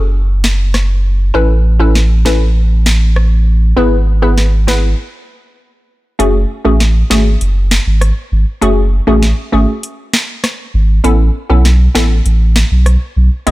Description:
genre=dancehall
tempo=99 BPM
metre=4/4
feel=straight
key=F# minor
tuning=A4 = 442 Hz
part: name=glassy wavetable pluck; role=accompaniment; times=0.0-13.5 s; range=G#3 to B4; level=-14 LUFS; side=left 1 dB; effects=chorus
part: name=saturated sub bass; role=bass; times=0.0-13.5 s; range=F#1 to B1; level=-10 LUFS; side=equal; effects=none
part: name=downlifter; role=sound effects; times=0.2-1.3 s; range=none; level=-49 LUFS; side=right 1 dB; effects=none
part: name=island pop drum kit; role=drums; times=0.4-13.5 s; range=hi-hat, rim click, snare drum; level=-17 LUFS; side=equal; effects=none
room=little or no reverb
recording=none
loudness=-9 LUFS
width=side -18 dB against mid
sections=0.0-6.2 A section; 6.2-13.5 B section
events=break 5.0-6.2; kick muted 6.2-13.5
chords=0.0 N.C.; 1.3 Aadd9; 3.8 E/G#; 6.2 F#madd9; 11.0 Aadd9

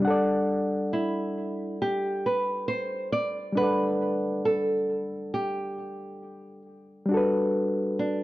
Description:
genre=hip hop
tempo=68 BPM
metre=4/4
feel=swing 55% on 16ths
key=G major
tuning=A4 = 441 Hz
part: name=reed electric piano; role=accompaniment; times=0.0-8.2 s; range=G3 to F#5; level=-27 LUFS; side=left 1 dB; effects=low-pass filter
part: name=nylon-string guitar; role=melody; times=0.9-8.2 s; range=D4 to D5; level=-28 LUFS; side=right 1 dB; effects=low-pass filter, analog delay
room=moderate spring reverb, RT60 1.5 s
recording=dark, warm production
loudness=-25 LUFS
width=side -17 dB against mid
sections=0.0-7.1 A section; 7.1-8.2 B section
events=none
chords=0.0 Gmaj7sus2; 7.1 Gmaj9

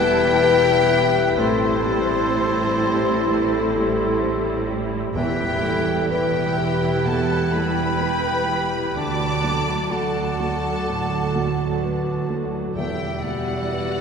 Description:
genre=cinematic, emotional film score for orchestra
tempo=63 BPM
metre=4/4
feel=rubato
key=E minor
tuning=A4 = 440 Hz
part: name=warm symphonic violin section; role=melody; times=0.0-14.0 s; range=C5 to D6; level=-28 LUFS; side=left 2 dB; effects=none
part: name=mellow clarinet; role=second line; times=0.0-14.0 s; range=E4 to G4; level=-31 LUFS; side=left 1 dB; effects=none
part: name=rich symphonic violin section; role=second line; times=0.0-14.0 s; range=C4 to D5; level=-31 LUFS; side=left 1 dB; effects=none
part: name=silver concert flute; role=second line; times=0.0-14.0 s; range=A4 to A5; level=-29 LUFS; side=equal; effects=none
part: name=warm oboe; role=second line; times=0.0-14.0 s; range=B4 to E5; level=-30 LUFS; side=equal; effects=none
part: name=dark grand piano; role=accompaniment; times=0.0-14.0 s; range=D2 to C5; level=-28 LUFS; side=left 1 dB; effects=none
part: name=dark symphonic viola section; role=accompaniment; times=0.0-14.0 s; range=D3 to F#4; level=-29 LUFS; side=right 2 dB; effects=none
part: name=dark French horn section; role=sustained chords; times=0.0-14.0 s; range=E4 to B4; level=-25 LUFS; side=left 4 dB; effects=none
part: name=warm symphonic cello section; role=bass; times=0.0-14.0 s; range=D2 to A2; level=-29 LUFS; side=right 3 dB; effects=none
part: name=warm symphonic double bass section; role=bass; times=0.0-14.0 s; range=E1 to D2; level=-29 LUFS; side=right 4 dB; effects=none
part: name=timpani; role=percussion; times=5.1-6.5, 12.8-14.0 s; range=E2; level=-37 LUFS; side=right 1 dB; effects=none
room=wet cathedral reverb, RT60 4.9 s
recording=minimal, uncompressed stereo recording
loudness=-19 LUFS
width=side -6 dB against mid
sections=0.0-14.0 A section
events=none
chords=0.0 Em; 1.4 Am7; 5.2 Em; 9.0 D; 12.8 Em

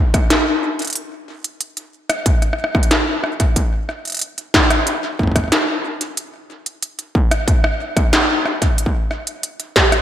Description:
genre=IDM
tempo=92 BPM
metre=4/4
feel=straight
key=none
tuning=none
part: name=electronic kick drum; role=drums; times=0.1-9.9 s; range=none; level=-16 LUFS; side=equal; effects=distortion
part: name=industrial drum kit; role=drums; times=0.1-10.0 s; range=hi-hat, rim click, snare drum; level=-17 LUFS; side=equal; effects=gated reverb, digital delay
room=moderate lush hall reverb, RT60 2.0 s, digital ambience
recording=bright 1980s-style digital production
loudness=-16 LUFS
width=side -11 dB against mid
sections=0.0-10.0 A section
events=none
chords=none

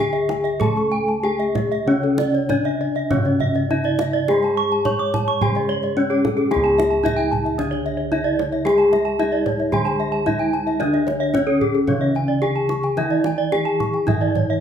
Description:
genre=Balinese gamelan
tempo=95-112 BPM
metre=4/4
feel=straight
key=C# pelog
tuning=A4 = 441 Hz
part: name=gamelan-type bronze metallophone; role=melody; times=0.0-14.6 s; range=C#4 to C#5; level=-22 LUFS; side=left 1 dB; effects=none
part: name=gamelan-type bronze metallophone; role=accompaniment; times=0.0-14.6 s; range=C#3 to A3-40c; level=-28 LUFS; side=right 2 dB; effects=none
part: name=gamelan-type bronze metallophone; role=arpeggios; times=0.0-14.5 s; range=G#4-45c to C#6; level=-25 LUFS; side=left 4 dB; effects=none
part: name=gamelan-type bossed gongs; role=bass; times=0.0-14.6 s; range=C#2 to G#4-45c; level=-24 LUFS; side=left 1 dB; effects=none
part: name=gamelan-type bronze metallophone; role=arpeggios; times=0.1-14.6 s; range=G#4-45c to D6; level=-26 LUFS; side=right 6 dB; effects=none
part: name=kendang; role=percussion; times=0.1-14.5 s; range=none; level=-27 LUFS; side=right 3 dB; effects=none
room=moderate large studio reverb, RT60 0.8 s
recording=band playing live in one room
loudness=-17 LUFS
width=side -8 dB against mid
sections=0.0-6.5 A section; 6.5-14.6 B section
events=none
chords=none

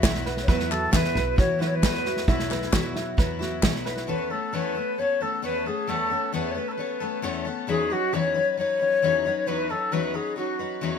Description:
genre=indie folk with a building arrangement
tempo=134 BPM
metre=4/4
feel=straight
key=unclear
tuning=A4 = 440 Hz
part: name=breathy mellow wooden flute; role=melody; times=0.0-11.0 s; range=E4 to E5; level=-26 LUFS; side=left 2 dB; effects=slapback echo
part: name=felt-muted upright piano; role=accompaniment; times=0.0-4.1 s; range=E2 to E5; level=-38 LUFS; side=right 8 dB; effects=none
part: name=picked twelve-string acoustic guitar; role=accompaniment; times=0.0-11.0 s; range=E2 to B4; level=-29 LUFS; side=left 7 dB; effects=none
part: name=warm upright piano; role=arpeggios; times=0.0-4.1 s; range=E4 to B4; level=-32 LUFS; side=right 4 dB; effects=slapback echo
part: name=upright bass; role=bass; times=0.0-4.1 s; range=B1 to E3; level=-31 LUFS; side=right 1 dB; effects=none
part: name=unplugged drum kit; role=drums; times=0.0-4.0 s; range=kick drum, snare drum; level=-24 LUFS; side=right 1 dB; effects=none
part: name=group handclap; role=percussion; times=0.0-3.7 s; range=none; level=-32 LUFS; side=left 6 dB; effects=none
room=light reverb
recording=none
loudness=-23 LUFS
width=side -7 dB against mid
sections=0.0-4.1 A section; 4.1-11.0 A section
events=none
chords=0.0 Esus2; 4.1 Aadd9/E; 7.7 Badd9/E

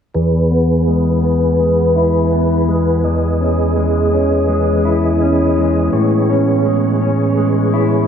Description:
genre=dream pop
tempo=83 BPM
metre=4/4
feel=straight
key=E major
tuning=A4 = 440 Hz
part: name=mellow tonewheel organ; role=sustained chords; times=0.1-8.1 s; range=E2 to D#5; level=-15 LUFS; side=right 1 dB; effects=chorus vibrato, wide subtle chorus, low-pass filter
part: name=mellow electric guitar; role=arpeggios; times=0.2-8.1 s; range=E2 to E4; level=-16 LUFS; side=left 2 dB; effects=lush chorus, low-pass filter, tape echo
room=wet lush hall reverb, RT60 2.6 s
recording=none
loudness=-12 LUFS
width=side -8 dB against mid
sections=0.2-8.1 A section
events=filter sweep 0.2-8.1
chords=0.2 E; 3.0 C#m7/E; 5.9 Amaj7

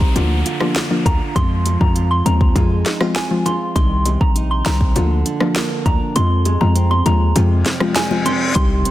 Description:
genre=dancehall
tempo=100 BPM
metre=4/4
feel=straight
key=F dorian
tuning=A4 = 440 Hz
part: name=soft round pluck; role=accompaniment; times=0.0-8.9 s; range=Eb3 to G4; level=-21 LUFS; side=left 2 dB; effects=chorus
part: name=nylon-string guitar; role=arpeggios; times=0.0-8.9 s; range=F2 to G4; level=-25 LUFS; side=right 5 dB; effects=none
part: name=hard-hitting 808-style bass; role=bass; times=0.0-8.8 s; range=Bb1 to F2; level=-17 LUFS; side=equal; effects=none
part: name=afro-pop drum kit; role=drums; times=0.0-8.9 s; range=hi-hat, kick drum, rim click, snare drum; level=-19 LUFS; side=equal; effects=none
part: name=downlifter, reverse cymbal and impact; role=sound effects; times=0.0-3.8, 7.6-8.9 s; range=none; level=-27 LUFS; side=left 2 dB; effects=none
part: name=bongos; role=percussion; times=0.2-8.4 s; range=none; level=-30 LUFS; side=left 5 dB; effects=none
part: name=soft synth bell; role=melody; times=1.1-8.7 s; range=Ab5 to C6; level=-24 LUFS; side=right 2 dB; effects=chorus, digital delay
room=light reverb, digital ambience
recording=dense, heavily limited modern master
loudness=-14 LUFS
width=side -14 dB against mid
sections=0.0-8.6 A section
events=kick muted 6.2-8.6; reverse cymbal 7.6-8.6; impact 8.6-8.9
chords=0.2 Bb/D; 1.4 Fm; 3.8 Cm; 5.0 Bb/D; 6.2 Fm

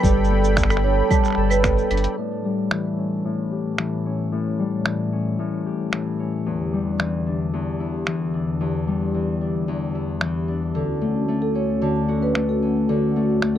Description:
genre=folktronica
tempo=112 BPM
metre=4/4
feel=straight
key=A mixolydian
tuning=A4 = 440 Hz
part: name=marimba with soft mallets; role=second line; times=0.0-1.9, 10.8-13.6 s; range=A4 to A5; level=-26 LUFS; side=right 6 dB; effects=tape echo
part: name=warm analog pad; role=sustained chords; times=0.0-13.6 s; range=D2 to B5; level=-27 LUFS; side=right 1 dB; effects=chorus
part: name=Celtic harp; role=arpeggios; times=0.0-13.6 s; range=E2 to A4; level=-23 LUFS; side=left 4 dB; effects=low-pass filter, tape echo
part: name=warm sub bass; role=bass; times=0.0-2.1 s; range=G1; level=-21 LUFS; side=right 1 dB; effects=none
part: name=electronic kick drum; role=drums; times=0.0-1.7 s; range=none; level=-21 LUFS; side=right 1 dB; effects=none
part: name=lo-fi sampler-style drum kit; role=drums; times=0.0-13.5 s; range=cabasa, claves, finger snaps, hi-hat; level=-25 LUFS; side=right 1 dB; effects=none
room=light reverb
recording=dry, close 1970s-style studio recording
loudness=-20 LUFS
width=side -11 dB against mid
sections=0.0-2.2 A section; 2.2-13.6 B section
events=band accent 1.6; drum fill 1.9; filter sweep on harp 2.2-13.6; filter sweep on analog synth pad 2.2-13.6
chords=0.0 Gadd9; 2.2 A7; 6.5 Em7; 10.7 Dmaj7

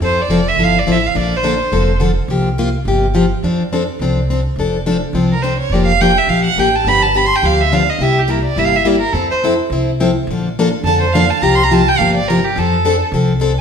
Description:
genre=acoustic string swing (jazz manouche)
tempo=210 BPM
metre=4/4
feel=swing 56% on 8ths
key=F major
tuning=A4 = 439 Hz
part: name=warm violin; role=melody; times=0.0-1.9, 5.3-13.6 s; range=G4 to C6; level=-15 LUFS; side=right 3 dB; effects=none
part: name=picked plugged-in steel-string acoustic guitar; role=accompaniment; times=0.0-13.5 s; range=C3 to A4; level=-16 LUFS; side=left 2 dB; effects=none
part: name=upright bass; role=bass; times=0.0-13.6 s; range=F1 to F2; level=-19 LUFS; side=right 1 dB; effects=none
room=wet stone room reverb, RT60 1.4 s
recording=band playing live in one room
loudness=-12 LUFS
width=side -7 dB against mid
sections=0.0-4.6 A section; 4.6-13.6 B section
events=violin solo 4.6-13.6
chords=0.0 Fmaj7; 1.1 Bbmaj7; 2.3 C7sus4; 3.4 F6; 5.7 Bb6/F; 6.9 G7; 8.0 C7; 9.1 Fmaj7; 10.3 Bbmaj7; 11.4 C7sus4; 12.6 F6

